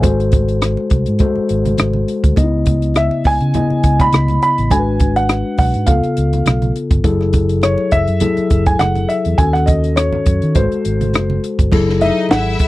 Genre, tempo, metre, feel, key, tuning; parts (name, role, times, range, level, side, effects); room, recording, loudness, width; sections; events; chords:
lush 1970s-style soul; 103 BPM; 4/4; swing 54% on 16ths; C# minor; A4 = 440 Hz
mellow tine electric piano; accompaniment; 0.0-12.7 s; C#3 to G#5; -18 LUFS; left 3 dB
fingered electric bass; bass; 0.0-12.5 s; F#1 to D#3; -18 LUFS; equal
compact cocktail drum kit; drums; 0.0-12.7 s; crash cymbal, hi-hat, kick drum, rim click, snare drum; -16 LUFS; equal
congas; percussion; 0.0-12.4 s; -24 LUFS; right 4 dB
dark concert grand piano; melody; 3.0-12.7 s; B#4 to B5; -18 LUFS; right 1 dB
rich studio string section; second line; 12.0-12.7 s; D#4 to E5; -22 LUFS; left 1 dB
little or no reverb; dry, close 1970s-style studio recording; -12 LUFS; side -17 dB against mid
0.0-11.7 A section
0.0 G#7b9; 2.4 C#m9; 4.7 G#m7b5; 5.9 C#7b13; 7.0 F#m9; 9.4 D#m7b5; 10.6 G#7b9; 11.7 F#m9